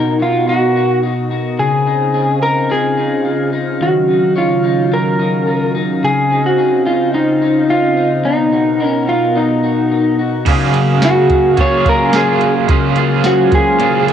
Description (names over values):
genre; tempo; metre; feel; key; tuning
dream pop; 108 BPM; 4/4; straight; unclear; A4 = 440 Hz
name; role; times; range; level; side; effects
electric slide guitar; melody; 0.0-14.1 s; Eb4 to Db5; -14 LUFS; equal; cassette tape, tape echo
lush unison pad; sustained chords; 0.0-14.1 s; Cb3 to F5; -18 LUFS; right 1 dB; chorus
electric guitar at the edge of break-up; arpeggios; 0.0-14.1 s; Db3 to Db5; -20 LUFS; left 6 dB; lush chorus, tape echo
overdriven semi-hollow guitar; accompaniment; 10.5-14.1 s; Db3 to Ab4; -17 LUFS; right 10 dB; tremolo, wide subtle chorus
soft vintage rhythm box; drums; 10.5-14.1 s; crash cymbal, hi-hat, kick drum, snare drum, tambourine; -17 LUFS; right 1 dB; cassette tape
vibraphone with medium mallets; texture; 11.0-14.1 s; Ab4 to Db5; -30 LUFS; left 8 dB; none
room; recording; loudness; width
moderate spring reverb, RT60 1.5 s, digital ambience; home recording on cassette; -12 LUFS; side -9 dB against mid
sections
0.0-10.5 A section; 10.5-14.1 B section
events
none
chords
0.0 Cbmaj7; 1.6 Dbmaj9; 3.8 Ebm9; 6.0 Dbmaj9; 8.2 Cbmaj7; 10.5 Gbmaj9/Db